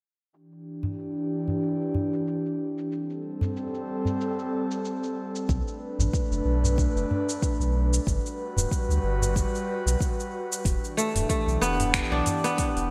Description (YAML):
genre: organic downtempo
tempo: 93 BPM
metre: 4/4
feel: swing 56% on 16ths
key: unclear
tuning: A4 = 439 Hz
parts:
  - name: airy breathy pad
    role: sustained chords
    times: 0.6-12.9 s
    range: E3 to B4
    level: -32 LUFS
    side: equal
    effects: chorus, sidechain pumping
  - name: afro-pop drum kit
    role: drums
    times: 0.3-12.9 s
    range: cabasa, finger snaps, hi-hat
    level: -33 LUFS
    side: equal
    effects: low-pass filter on perc, studio ambience, low-pass filter on hats, low-pass filter on snare, gated reverb
  - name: udu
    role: percussion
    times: 0.8-12.4 s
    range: none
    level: -32 LUFS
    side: equal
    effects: none
  - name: warm sub bass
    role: bass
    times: 5.5-12.9 s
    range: D1 to D2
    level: -28 LUFS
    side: equal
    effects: none
  - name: electronic kick drum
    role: drums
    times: 5.5-12.7 s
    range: none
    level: -31 LUFS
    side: equal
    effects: studio ambience
  - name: kora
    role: arpeggios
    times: 11.0-12.9 s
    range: A3 to D4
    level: -28 LUFS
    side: equal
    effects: digital delay
room: moderate lush hall reverb, RT60 1.8 s, digital ambience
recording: bright 1980s-style digital production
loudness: -27 LUFS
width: mono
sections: 0.3-10.7 A section; 10.7-12.9 B section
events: filter sweep on drum 0.3-10.7; filter sweep on analog synth pad 0.3-10.7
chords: 0.3 Em7; 2.9 Am7; 5.5 Bm7; 8.1 Gmaj7; 10.7 Em7